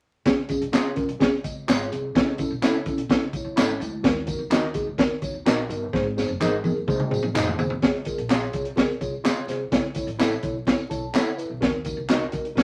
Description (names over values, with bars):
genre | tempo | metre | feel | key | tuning
uptempo 1960s-style soul | 127 BPM | 4/4 | straight | unclear | A4 = 440 Hz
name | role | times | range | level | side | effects
mellow tine electric piano | accompaniment | 0.3-12.6 s | Ab3 to A5 | -31 LUFS | equal | none
upright bass | bass | 0.3-12.6 s | F1 to Eb2 | -37 LUFS | equal | none
crunchy breakbeat drum kit | drums | 0.3-12.6 s | hi-hat, kick drum, snare drum, toms | -25 LUFS | equal | none
tambourine and handclaps | percussion | 0.3-12.6 s | none | -36 LUFS | equal | none
mellow electric guitar | stabs | 0.7-12.2 s | Eb4 to F5 | -30 LUFS | equal | none
room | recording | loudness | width
moderate studio reverb, RT60 0.5 s | vinyl crackle | -24 LUFS | mono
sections
0.3-7.8 A section; 7.8-12.6 B section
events
drum fill 5.9-7.8; tine electric piano fill 10.7-11.6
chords
0.3 Db; 2.1 A; 4.0 Ebm; 5.9 Ab; 7.8 Db; 9.7 A; 11.6 Ebm